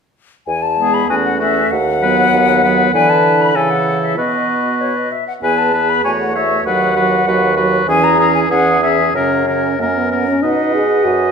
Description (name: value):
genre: quick classical-period movement for wind quintet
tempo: 97 BPM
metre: 2/4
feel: straight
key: B major from 7.9 s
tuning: A4 = 438 Hz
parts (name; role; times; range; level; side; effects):
- bright concert flute; melody; 0.5-11.3 s; C#5 to B5; -17 LUFS; left 6 dB; none
- mellow bassoon; bass; 0.5-11.3 s; D#2 to D3; -19 LUFS; right 3 dB; none
- clear oboe; second line; 0.8-11.3 s; F#4 to D#5; -18 LUFS; left 3 dB; none
- bright clarinet; accompaniment; 0.8-11.3 s; B3 to B4; -21 LUFS; right 8 dB; none
- warm French horn; accompaniment; 0.8-11.3 s; C#3 to G#4; -20 LUFS; right 2 dB; none
room: wet recital hall reverb, RT60 1.4 s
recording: recorded in a church or concert hall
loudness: -12 LUFS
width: side -6 dB against mid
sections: 0.5-10.4 A section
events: none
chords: 0.5 E; 1.1 F#m7/E; 1.7 B/D#; 2.9 E5/D; 3.6 A/C#; 4.2 B; 5.4 E; 6.0 F#m7/E; 6.7 B/D#; 7.9 C#m/E; 9.1 F#; 10.4 B